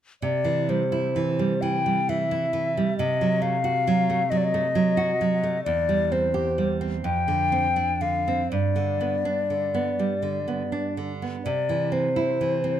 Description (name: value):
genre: romantic duo for flute and classical guitar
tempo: 40-46 BPM (dotted quarters)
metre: 6/8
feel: rubato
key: C major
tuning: A4 = 440 Hz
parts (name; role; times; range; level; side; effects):
- mellow hollow silver concert flute; melody; 0.2-12.8 s; C5 to G5; -25 LUFS; left 4 dB; none
- nylon-string guitar; accompaniment; 0.2-12.8 s; E2 to G4; -25 LUFS; right 4 dB; none
room: light reverb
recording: close, detailed microphones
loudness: -22 LUFS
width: side -10 dB against mid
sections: 0.2-12.8 A section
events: none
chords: 0.2 C; 3.0 Cdim7; 5.6 C/E; 7.0 Dm7/F; 8.5 G; 11.4 C